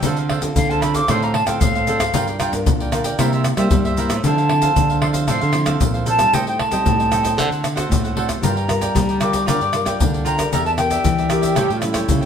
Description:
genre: samba and choro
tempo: 114 BPM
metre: 4/4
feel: straight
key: unclear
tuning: A4 = 440 Hz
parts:
  - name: cavaquinho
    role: accompaniment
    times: 0.0-12.3 s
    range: D4 to G5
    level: -26 LUFS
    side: right 4 dB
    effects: none
  - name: nylon-string guitar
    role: accompaniment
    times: 0.0-12.3 s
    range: G2 to Bb4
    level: -27 LUFS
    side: left 1 dB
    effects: none
  - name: nylon-string guitar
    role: bass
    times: 0.0-12.3 s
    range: E2 to G3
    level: -21 LUFS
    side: right 1 dB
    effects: none
  - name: tube shaker, surdo, pandeiro and tamborim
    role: percussion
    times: 0.0-12.3 s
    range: none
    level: -21 LUFS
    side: left 2 dB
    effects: none
  - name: silver concert flute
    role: melody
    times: 0.6-11.8 s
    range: F5 to D6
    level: -20 LUFS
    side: equal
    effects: none
  - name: breathy trombone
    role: second line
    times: 11.3-12.3 s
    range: E4 to G4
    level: -21 LUFS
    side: right 1 dB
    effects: none
room: moderate studio reverb, RT60 1.0 s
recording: band playing live in one room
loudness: -16 LUFS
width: side -7 dB against mid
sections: 0.0-4.2 A section; 4.2-12.3 B section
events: flute solo 0.0-4.2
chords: 0.0 Dm7; 2.1 Gm7; 3.2 C7; 4.2 Dm9; 6.3 Am7b5; 7.4 D7; 8.4 Gm7; 10.5 Em7b5; 11.6 A7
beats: | 0.04 0.56 1.09 1.61 | 2.14 2.66 3.19 3.71 | 4.23 4.76 5.28 5.81 | 6.33 6.85 7.38 7.90 | 8.43 8.95 9.47 10.00 | 10.52 11.04 11.57 12.09

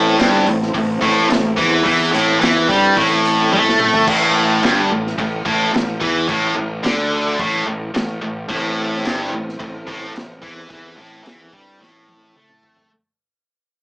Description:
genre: blues rock power trio and southern rock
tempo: 108 BPM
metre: 4/4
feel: straight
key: A minor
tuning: A4 = 440 Hz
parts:
  - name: percussive tonewheel organ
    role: sustained chords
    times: 0.0-4.1, 8.5-12.9 s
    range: C4 to C5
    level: -26 LUFS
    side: equal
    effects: slow rotary speaker, chorus vibrato
  - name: tight distorted guitar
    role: riff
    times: 0.0-12.9 s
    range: G2 to A3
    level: -16 LUFS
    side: equal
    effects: distortion
  - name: fuzz fingered electric bass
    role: bass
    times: 0.0-12.9 s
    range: G1 to A2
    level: -23 LUFS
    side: equal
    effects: overdrive
  - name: vintage drum kit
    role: drums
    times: 0.2-12.9 s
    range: crash cymbal, hi-hat, kick drum, snare drum, toms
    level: -24 LUFS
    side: equal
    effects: none
room: moderate club ambience, RT60 0.5 s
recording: small speaker sound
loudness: -14 LUFS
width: side -36 dB against mid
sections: 0.0-4.1 A section; 4.1-12.9 A section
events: drum fill 3.5-4.1, 11.8-12.9; fade-out 4.1-12.9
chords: 0.0 Am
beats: 0.18 0.74 1.30 | 1.85 2.41 2.96 3.52 | 4.08 4.63 5.18 5.74 | 6.29 6.84 7.40 7.95 | 8.50 9.05 9.60 10.15 | 10.71 11.26 11.81 12.36

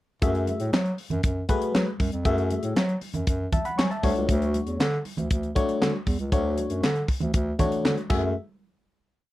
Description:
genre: early-eighties boogie funk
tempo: 118 BPM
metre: 4/4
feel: straight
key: F# minor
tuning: A4 = 440 Hz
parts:
  - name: FM electric piano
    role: accompaniment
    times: 0.2-8.3 s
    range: A3 to C#6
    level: -27 LUFS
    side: left 3 dB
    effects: chorus
  - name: warm bass clarinet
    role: bass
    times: 0.2-8.3 s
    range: C#2 to F#3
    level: -27 LUFS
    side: equal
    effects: none
  - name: tight funk drum kit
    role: drums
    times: 0.2-8.2 s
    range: crash cymbal, handclaps, hi-hat, kick drum, snare drum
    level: -26 LUFS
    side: equal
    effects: none
  - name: congas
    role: percussion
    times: 0.2-8.3 s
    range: none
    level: -34 LUFS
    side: right 3 dB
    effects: none
room: little or no reverb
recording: dry, close 1970s-style studio recording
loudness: -23 LUFS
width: side -16 dB against mid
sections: 0.2-8.4 verse; 8.4-9.3 final hit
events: none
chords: 0.2 F#m9; 4.0 Dmaj7; 8.1 F#m9; 8.4 N.C.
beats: | 0.22 0.73 1.24 1.75 | 2.25 2.76 3.27 3.78 | 4.29 4.80 5.30 5.81 | 6.32 6.83 7.34 7.85

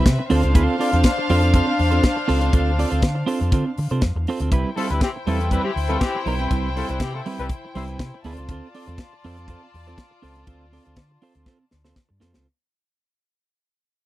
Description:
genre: disco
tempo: 121 BPM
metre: 4/4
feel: straight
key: unclear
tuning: A4 = 440 Hz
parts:
  - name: warm studio violin section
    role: second line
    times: 0.0-12.2 s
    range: C4 to A5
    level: -26 LUFS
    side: left 2 dB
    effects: none
  - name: clean electric guitar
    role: accompaniment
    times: 0.0-12.5 s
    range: G3 to D5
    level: -24 LUFS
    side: right 4 dB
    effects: none
  - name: fingered electric bass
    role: bass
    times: 0.1-12.4 s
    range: B1 to D3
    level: -22 LUFS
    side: equal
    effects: none
  - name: tight funk drum kit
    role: drums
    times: 0.1-12.4 s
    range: hi-hat, kick drum, snare drum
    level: -20 LUFS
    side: equal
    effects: none
  - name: clear horn section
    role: stabs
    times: 4.8-7.8 s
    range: E3 to C5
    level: -28 LUFS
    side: left 5 dB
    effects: none
room: little or no reverb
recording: none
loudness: -18 LUFS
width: side -15 dB against mid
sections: 0.0-12.5 A section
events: fade-out 0.0-12.5; drum fill 11.5-12.5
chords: 0.3 Dm7; 4.5 Cmaj7; 8.2 Dm7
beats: 0.06 | 0.55 1.05 1.54 2.04 | 2.53 3.03 3.52 4.02 | 4.52 5.01 5.51 6.00 | 6.50 7.00 7.50 7.99 | 8.49 8.98 9.48 9.98 | 10.47 10.97 11.47 11.96

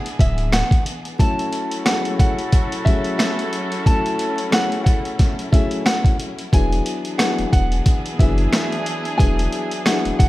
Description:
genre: hip hop, boom-bap hip-hop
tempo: 90 BPM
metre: 4/4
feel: swing 55% on 16ths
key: F# minor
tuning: A4 = 441 Hz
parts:
  - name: nylon-string guitar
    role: melody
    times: 0.0-10.3 s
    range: E5 to A5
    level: -26 LUFS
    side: right 1 dB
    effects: high-pass filter, low-pass filter
  - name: clear studio string section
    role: sustained chords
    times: 0.0-10.3 s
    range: E3 to G#4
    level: -32 LUFS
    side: right 1 dB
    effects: high-pass filter, low-pass filter
  - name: warm horn section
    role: stabs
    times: 0.0-10.3 s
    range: D4 to A4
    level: -30 LUFS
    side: equal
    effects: high-pass filter, low-pass filter, tape echo
  - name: boom bap sampler-style drum kit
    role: drums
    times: 0.1-10.3 s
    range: hi-hat, kick drum, rim click, snare drum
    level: -18 LUFS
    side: equal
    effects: none
  - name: warm sub bass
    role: bass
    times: 0.2-0.6, 6.5-10.3 s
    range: D1 to F#1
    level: -21 LUFS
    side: equal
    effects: none
  - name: finger snap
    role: percussion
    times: 0.5-10.0 s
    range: none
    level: -33 LUFS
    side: right 5 dB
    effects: none
  - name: dark grand piano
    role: accompaniment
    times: 1.2-10.3 s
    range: F#3 to A4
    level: -24 LUFS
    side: left 3 dB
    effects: cassette tape, high-pass filter, low-pass filter
room: small room ambience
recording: vinyl crackle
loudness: -16 LUFS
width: side -17 dB against mid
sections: 0.0-10.3 A section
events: break 0.0-1.2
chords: 0.0 E7; 1.2 F#m7; 6.5 E7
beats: 0.53 | 1.20 1.86 2.53 3.20 | 3.86 4.53 5.20 5.86 | 6.53 7.20 7.86 8.53 | 9.20 9.86

